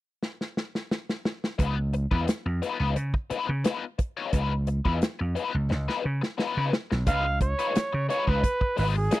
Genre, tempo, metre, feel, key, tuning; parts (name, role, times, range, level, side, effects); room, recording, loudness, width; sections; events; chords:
funk; 88 BPM; 4/4; straight; Db mixolydian; A4 = 440 Hz
warm soul drum kit; drums; 0.2-9.2 s; hi-hat, kick drum, snare drum; -27 LUFS; equal
crunchy overdriven guitar; accompaniment; 1.6-9.2 s; Ab3 to Db5; -30 LUFS; left 6 dB; wah
vintage slap bass; bass; 1.6-9.1 s; Ab1 to Db3; -26 LUFS; right 1 dB
breathy trumpet; melody; 7.1-9.2 s; Ab4 to F5; -27 LUFS; right 2 dB
little or no reverb; dry, close 1970s-style studio recording; -25 LUFS; side -16 dB against mid
0.0-1.6 A section; 1.6-7.1 B section; 7.1-9.2 C section
drum fill 0.2-1.6, 5.7-7.1
0.0 N.C.; 1.6 Db9